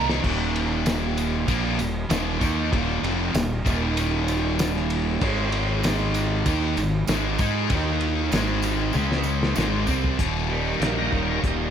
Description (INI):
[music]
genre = classic rock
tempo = 96 BPM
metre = 4/4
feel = straight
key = Eb major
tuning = A4 = 440 Hz
[part]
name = distorted electric guitar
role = riff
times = 0.0-11.7 s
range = Eb2 to Ab4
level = -27 LUFS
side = left 12 dB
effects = distortion
[part]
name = overdriven electric guitar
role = riff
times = 0.0-11.7 s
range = Eb2 to Ab4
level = -27 LUFS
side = right 10 dB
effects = spring reverb
[part]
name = fuzz fingered electric bass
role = bass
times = 0.0-11.7 s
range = Eb1 to Ab2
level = -27 LUFS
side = left 1 dB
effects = overdrive
[part]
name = cloth-damped thuddy drum kit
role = drums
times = 0.1-11.6 s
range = crash cymbal, hi-hat, kick drum, ride cymbal, snare drum, toms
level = -27 LUFS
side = equal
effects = none
[part]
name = tambourine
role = percussion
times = 0.9-10.0 s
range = none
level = -41 LUFS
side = right 7 dB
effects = none
[part]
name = bright tonewheel organ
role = sustained chords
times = 10.5-11.7 s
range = Eb3 to Eb5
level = -28 LUFS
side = equal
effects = slow rotary speaker, overdrive
[sound]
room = light reverb, small room ambience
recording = none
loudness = -21 LUFS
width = side -8 dB against mid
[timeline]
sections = 0.2-10.2 A section; 10.2-11.7 B section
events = drum fill 0.0, 8.9-10.2; tonewheel organ solo 10.2-11.7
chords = 0.2 Eb5; 5.2 Ab5; 7.7 Eb5; 8.3 Ab5; 8.9 Db5; 9.6 Ab5; 10.2 Eb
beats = | 0.23 0.86 1.48 2.10 | 2.73 3.35 3.97 4.59 | 5.22 5.84 6.46 7.08 | 7.70 8.32 8.95 9.57 | 10.19 10.81 11.44